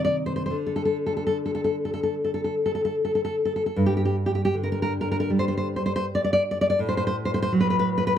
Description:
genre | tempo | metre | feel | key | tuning
romantic piece for solo classical guitar | 72-83 BPM | 4/4 | rubato | G minor | A4 = 440 Hz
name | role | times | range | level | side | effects
nylon-string guitar | solo | 0.0-8.2 s | G2 to D5 | -22 LUFS | equal | none
room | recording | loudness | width
light reverb | close, detailed microphones | -22 LUFS | side -9 dB against mid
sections
0.0-8.2 A section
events
none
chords
0.0 Cmadd9; 0.6 N.C.; 3.8 G5; 6.8 Am69

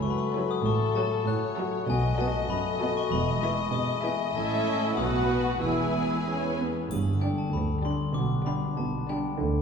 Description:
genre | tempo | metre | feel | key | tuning
cinematic, playful, whimsical film cue | 97 BPM | 2/4 | straight | E major | A4 = 440 Hz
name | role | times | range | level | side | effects
glockenspiel with brass mallets | melody | 0.0-9.4 s | G5 to F#6 | -34 LUFS | left 7 dB | none
rich studio violin section | melody | 0.0-9.3 s | A4 to G#5 | -35 LUFS | left 5 dB | none
concert harp | arpeggios | 0.0-9.6 s | F#2 to E5 | -31 LUFS | left 5 dB | none
rich chamber cello section | bass | 0.0-9.6 s | C#2 to D3 | -32 LUFS | right 3 dB | none
rich chamber violin section | second line | 0.3-9.3 s | F#4 to E5 | -37 LUFS | left 3 dB | none
rich chamber viola section | accompaniment | 0.4-9.3 s | F#3 to F#4 | -32 LUFS | right 2 dB | none
rich studio double bass section | bass | 0.7-9.6 s | E1 to D2 | -33 LUFS | right 3 dB | none
triangle | percussion | 6.9-8.1 s | none | -50 LUFS | right 1 dB | none
room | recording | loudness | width
wet recital hall reverb, RT60 1.7 s | heard from further back in the room | -25 LUFS | side -6 dB against mid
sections
0.0-6.9 A section; 6.9-9.6 B section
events
none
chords
0.0 F#m7; 0.7 F#m/A; 1.9 B7; 3.1 E; 4.4 A; 5.0 B; 5.6 E; 6.9 G; 8.2 G/B

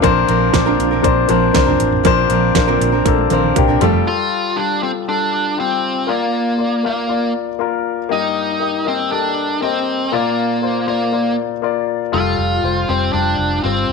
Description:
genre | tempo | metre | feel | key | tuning
piano-driven pop | 119 BPM | 4/4 | straight | Bb major | A4 = 442 Hz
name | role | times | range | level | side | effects
warm concert grand piano | accompaniment | 0.0-13.9 s | G2 to F5 | -18 LUFS | left 12 dB | none
picked steel-string acoustic guitar | riff | 0.0-4.1 s | Bb2 to Bb4 | -18 LUFS | right 16 dB | none
vintage muted fingered electric bass | bass | 0.0-4.0, 12.1-13.9 s | E1 to C2 | -21 LUFS | right 2 dB | none
pop drum kit | drums | 0.0-4.1 s | hi-hat, kick drum, snare drum, toms | -18 LUFS | right 6 dB | none
smooth overdriven lead guitar | melody | 4.1-13.9 s | Bb3 to F4 | -18 LUFS | right 2 dB | slapback echo
room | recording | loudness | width
light reverb | 1960s-style stereo with parts hard left and right | -14 LUFS | side -4 dB against mid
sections
0.0-4.1 A section; 4.1-13.9 B section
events
drum fill 3.1-4.1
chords
0.0 Bbadd9; 3.8 Fadd9; 6.1 Bb; 8.1 Eb/G; 10.1 Bb; 12.1 Fadd9

